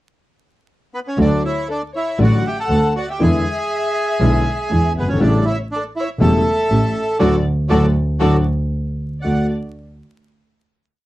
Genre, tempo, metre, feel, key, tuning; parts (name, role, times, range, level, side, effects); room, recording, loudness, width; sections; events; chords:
tango; 119 BPM; 4/4; rubato; D major; A4 = 441 Hz
bandoneon; melody; 0.9-9.5 s; B3 to A5; -21 LUFS; right 1 dB; slapback echo
warm studio violin section; second line; 1.2-9.5 s; F#4 to F#5; -27 LUFS; left 4 dB
warm concert grand piano; accompaniment; 1.2-9.5 s; E1 to F#4; -19 LUFS; left 2 dB
dark studio string section; stabs; 1.2-9.5 s; G#3 to G4; -25 LUFS; right 4 dB
clear double bass; bass; 1.2-9.5 s; E1 to E2; -18 LUFS; right 1 dB
little or no reverb; dry, close 1970s-style studio recording, vinyl crackle; -15 LUFS; side -16 dB against mid
0.0-1.2 pickup bar; 1.2-9.2 A section; 9.2-11.1 final chord
band accent 7.2-9.2
0.0 N.C.; 1.2 D; 3.2 E7; 5.2 A7; 7.2 D; 8.7 N.C.; 9.2 D